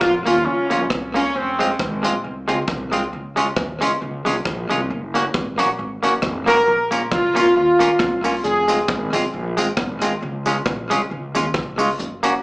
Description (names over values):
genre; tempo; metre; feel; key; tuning
ska; 135 BPM; 4/4; swing 56% on 8ths; unclear; A4 = 441 Hz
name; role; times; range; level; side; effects
mellow horn section; melody; 0.0-1.8, 6.5-8.9 s; C4 to Bb4; -18 LUFS; equal; analog delay, slapback echo
upright bass; bass; 0.0-12.4 s; F1 to F2; -28 LUFS; equal; none
crunchy breakbeat drum kit; drums; 0.0-12.3 s; hi-hat, kick drum, rim click; -26 LUFS; equal; analog delay
semi-hollow electric guitar; accompaniment; 0.3-12.3 s; Ab3 to Gb4; -21 LUFS; equal; lush chorus, slapback echo
tambourine; percussion; 6.9-12.3 s; none; -34 LUFS; equal; none
room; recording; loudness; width
moderate club reverb, RT60 0.8 s; live gig heard through the venue's PA, club reverb, small speaker sound; -17 LUFS; side -26 dB against mid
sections
0.0-12.4 A section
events
none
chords
0.0 Bbm; 1.3 Fm; 3.1 Db; 4.9 Gb; 6.7 Bbm; 8.4 Fm; 10.2 Db